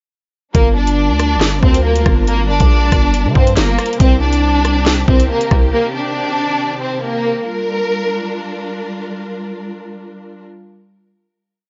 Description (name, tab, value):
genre	hip hop, drill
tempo	139 BPM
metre	4/4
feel	half-time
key	G minor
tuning	A4 = 440 Hz
part	warm studio violin section	melody	0.5-8.7 s	Bb3 to D5	-19 LUFS	equal	low-pass filter, digital delay
part	dark symphonic string section	sustained chords	0.5-10.4 s	C3 to Bb4	-28 LUFS	equal	none
part	growling 808-style bass	bass	0.5-5.7 s	G1 to D3	-18 LUFS	equal	none
part	drill drum kit	drums	0.5-5.6 s	handclaps, hi-hat, kick drum, rim click, snare drum	-16 LUFS	equal	none
room	studio reverb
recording	nothing above 7.5 kHz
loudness	-15 LUFS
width	mono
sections	0.5-7.5 hook; 7.5-10.9 final chord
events	none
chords	0.5 Gm7; 4.0 Cm; 7.5 Gm7